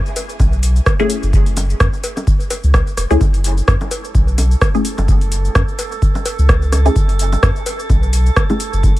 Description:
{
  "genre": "dub techno",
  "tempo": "128 BPM",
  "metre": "4/4",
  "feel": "swing 56% on 16ths",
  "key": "F# minor",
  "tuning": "A4 = 441 Hz",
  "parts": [
    { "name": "booming analog drum machine", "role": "drums", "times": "0.1-9.0 s", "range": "hi-hat, rim click, shaker", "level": "-21 LUFS", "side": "equal", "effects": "dub echo" },
    { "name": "cowbell and bongos", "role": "percussion", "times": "0.2-8.6 s", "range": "none", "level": "-28 LUFS", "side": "left 1 dB", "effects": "sidechain pumping on perc, dub echo" },
    { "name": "warm sub bass", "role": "bass", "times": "0.4-9.0 s", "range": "E1 to F#2", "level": "-15 LUFS", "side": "equal", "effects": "tube saturation, sidechain pumping" },
    { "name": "electronic kick drum", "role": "drums", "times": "0.4-8.9 s", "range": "none", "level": "-15 LUFS", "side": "equal", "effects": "none" },
    { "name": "filtered dub chord stab", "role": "stabs", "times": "1.0-9.0 s", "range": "A3 to G#4", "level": "-22 LUFS", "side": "left 2 dB", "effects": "phaser, sidechain pumping, dub echo" },
    { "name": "drifting glass-harmonics texture", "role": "texture", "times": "3.6-9.0 s", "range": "A4", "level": "-28 LUFS", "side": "right 7 dB", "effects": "chorus, built-in reverb, sidechain pumping" }
  ],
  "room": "little or no reverb",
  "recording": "vinyl crackle",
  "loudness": "-13 LUFS",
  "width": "side -17 dB against mid",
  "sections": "0.0-9.0 A section",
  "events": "filter sweep on synth stab 0.0-9.0",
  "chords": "0.0 F#m7",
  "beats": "0.40 0.86 | 1.33 1.80 2.27 2.74 | 3.21 3.68 4.15 4.62 | 5.08 5.55 6.02 6.49 | 6.96 7.43 7.90 8.37 | 8.83"
}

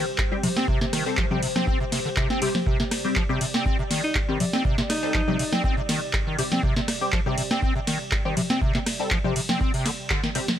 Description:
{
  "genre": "acid house",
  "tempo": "121 BPM",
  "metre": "4/4",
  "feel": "swing 53% on 16ths",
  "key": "C minor",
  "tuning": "A4 = 440 Hz",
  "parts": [
    { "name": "warbly tape-like pad", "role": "sustained chords", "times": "0.0-10.6 s", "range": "C3 to D5", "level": "-33 LUFS", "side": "right 1 dB", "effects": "chorus, built-in reverb, sidechain pumping" },
    { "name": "acid bass, square", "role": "riff", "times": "0.0-10.4 s", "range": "C3 to C4", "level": "-28 LUFS", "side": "equal", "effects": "overdrive, ensemble chorus, dub echo" },
    { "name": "filtered dub chord stab", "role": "stabs", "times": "0.0-10.5 s", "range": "G3 to A4", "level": "-30 LUFS", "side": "left 3 dB", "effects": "phaser, ensemble chorus, cassette tape, dub echo" },
    { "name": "booming analog drum machine", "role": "drums", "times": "0.2-10.6 s", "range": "congas, handclaps, hi-hat, ride cymbal, rim click, snare drum", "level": "-26 LUFS", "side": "equal", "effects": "none" },
    { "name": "electronic kick drum", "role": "drums", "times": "0.2-10.2 s", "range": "none", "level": "-26 LUFS", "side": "equal", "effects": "none" },
    { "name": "breathy alto saxophone", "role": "melody", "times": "4.0-5.6 s", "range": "Eb4", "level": "-30 LUFS", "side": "equal", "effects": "ping-pong delay" }
  ],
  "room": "light reverb",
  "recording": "none",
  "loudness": "-22 LUFS",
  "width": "side -10 dB against mid",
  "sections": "0.0-10.6 A section",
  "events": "drop 0.0-10.6; band accent 10.1",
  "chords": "0.0 C5",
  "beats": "0.19 | 0.68 1.18 1.67 2.17 | 2.67 3.16 3.66 4.15 | 4.65 5.14 5.64 6.14 | 6.63 7.13 7.62 8.12 | 8.62 9.11 9.61 10.10"
}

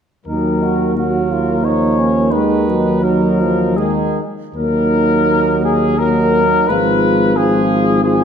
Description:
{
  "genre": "classical, hymn-like piece for brass band",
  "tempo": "72-91 BPM",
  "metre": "3/4",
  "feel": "rubato",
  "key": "Eb minor",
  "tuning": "A4 = 437 Hz",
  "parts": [
    { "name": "clear trumpet section", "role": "melody", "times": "0.3-8.2 s", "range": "Ab4 to Db5", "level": "-18 LUFS", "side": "left 4 dB", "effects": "none" },
    { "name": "warm flugelhorn", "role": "second line", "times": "0.3-8.2 s", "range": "Db4 to Gb4", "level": "-21 LUFS", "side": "right 6 dB", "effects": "none" },
    { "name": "clear trombone", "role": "accompaniment", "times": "0.3-8.2 s", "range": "Eb3 to Gb3", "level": "-21 LUFS", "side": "right 2 dB", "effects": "none" },
    { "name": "dark euphonium", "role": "accompaniment", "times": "0.3-8.2 s", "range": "Gb3 to Bb3", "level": "-19 LUFS", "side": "left 2 dB", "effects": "none" },
    { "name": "dark tuba", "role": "bass", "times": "0.3-8.2 s", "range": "Ab1 to Eb2", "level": "-18 LUFS", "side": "right 1 dB", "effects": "none" }
  ],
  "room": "moderate concert hall reverb, RT60 2.2 s",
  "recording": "minimal, uncompressed stereo recording",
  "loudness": "-12 LUFS",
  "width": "side -7 dB against mid",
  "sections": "0.3-4.6 A section; 4.6-8.2 B section",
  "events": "none",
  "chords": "0.3 Ebm; 2.3 Abm/Eb; 4.6 Ebm; 6.7 Fdim/Ab",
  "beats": "| 0.27 0.98 1.64 | 2.33 3.03 3.76 | 4.55 5.28 5.99 | 6.68 7.36 8.04"
}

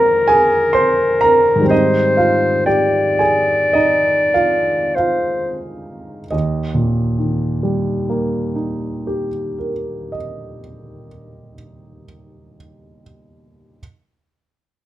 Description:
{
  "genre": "classical, impressionist duo for clarinet and grand piano",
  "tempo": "42-67 BPM",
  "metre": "4/4",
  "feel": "rubato",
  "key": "Eb major",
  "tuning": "A4 = 439 Hz",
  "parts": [
    { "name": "warm clarinet", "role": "melody", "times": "0.0-5.6 s", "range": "Bb4 to D5", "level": "-15 LUFS", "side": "left 2 dB", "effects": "none" },
    { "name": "warm grand piano", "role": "accompaniment", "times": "0.0-13.8 s", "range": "Eb2 to C6", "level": "-17 LUFS", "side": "right 2 dB", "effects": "none" }
  ],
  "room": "light reverb",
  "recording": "close, detailed microphones",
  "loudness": "-14 LUFS",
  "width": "side -14 dB against mid",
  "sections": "0.0-6.3 A section; 6.3-11.6 B section",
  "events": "slowing down 0.0-6.3",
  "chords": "0.0 Fm11; 1.7 Abmaj7; 6.3 Eb",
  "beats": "0.74 | 1.71 2.69 3.77 4.97 | 6.32 7.63 8.94 10.25"
}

